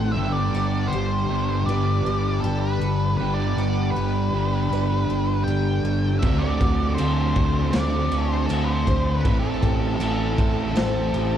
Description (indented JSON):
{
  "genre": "rock, shoegaze and dream pop",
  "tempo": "79 BPM",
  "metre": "4/4",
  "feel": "straight",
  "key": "G major",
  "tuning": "A4 = 440 Hz",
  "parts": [
    { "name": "octave-fuzz lead guitar", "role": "melody", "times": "0.0-11.4 s", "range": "A4 to G5", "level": "-29 LUFS", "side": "equal", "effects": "distortion, tape echo" },
    { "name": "deep dark ambient pad", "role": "sustained chords", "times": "0.0-11.4 s", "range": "G4 to D6", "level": "-35 LUFS", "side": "right 1 dB", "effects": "chorus, built-in reverb" },
    { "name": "picked twelve-string acoustic guitar", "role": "arpeggios", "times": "0.0-11.4 s", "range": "F#4 to F#5", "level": "-33 LUFS", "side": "left 4 dB", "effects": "lush chorus, tape echo" },
    { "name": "crunchy overdriven guitar", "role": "riff", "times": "0.0-11.4 s", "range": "G2 to A4", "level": "-27 LUFS", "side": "right 11 dB", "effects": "reverse reverb" },
    { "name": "thick fuzz guitar", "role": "riff", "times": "0.0-11.4 s", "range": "G2 to D4", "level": "-27 LUFS", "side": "left 9 dB", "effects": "distortion, ensemble chorus" },
    { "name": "overdriven fingered electric bass", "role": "bass", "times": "0.0-11.4 s", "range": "G1 to D2", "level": "-25 LUFS", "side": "equal", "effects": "none" },
    { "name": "raw garage drum kit", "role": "drums", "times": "6.2-11.3 s", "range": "crash cymbal, kick drum, snare drum", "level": "-25 LUFS", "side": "equal", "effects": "none" }
  ],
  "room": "light reverb",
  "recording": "dark, warm production",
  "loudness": "-20 LUFS",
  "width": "side -10 dB against mid",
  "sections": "0.0-11.4 A section",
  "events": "none",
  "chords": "0.2 Gmaj7; 6.2 D7; 9.2 Am7"
}